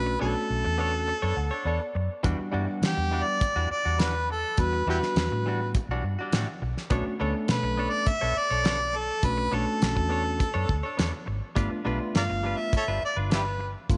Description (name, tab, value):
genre	straight-eighth soul blues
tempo	103 BPM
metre	4/4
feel	straight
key	B minor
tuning	A4 = 436 Hz
part	warm harmonica	melody	0.0-13.7 s	E4 to F5	-31 LUFS	equal	none
part	bright tine electric piano	accompaniment	0.0-14.0 s	G3 to F#5	-34 LUFS	equal	lush chorus
part	vintage muted fingered electric bass	bass	0.0-14.0 s	G1 to E3	-32 LUFS	equal	none
part	direct-recorded clean electric guitar	stabs	0.1-13.6 s	E3 to C#5	-37 LUFS	equal	none
part	cloth-damped thuddy drum kit	drums	2.2-14.0 s	hi-hat, kick drum, snare drum	-29 LUFS	equal	none
room	light reverb, small room reverb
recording	nothing above 10.3 kHz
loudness	-27 LUFS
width	mono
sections	0.0-14.0 A section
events	tine electric piano fill 1.1-2.3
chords	0.0 Bm9; 2.3 Em9; 6.9 Bm9; 11.6 G7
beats	0.50 1.09 1.67 | 2.25 2.83 3.42 4.00 | 4.58 5.16 5.75 6.33 | 6.91 7.49 8.07 8.66 | 9.24 9.82 10.40 10.98 | 11.57 12.15 12.73 13.31 | 13.89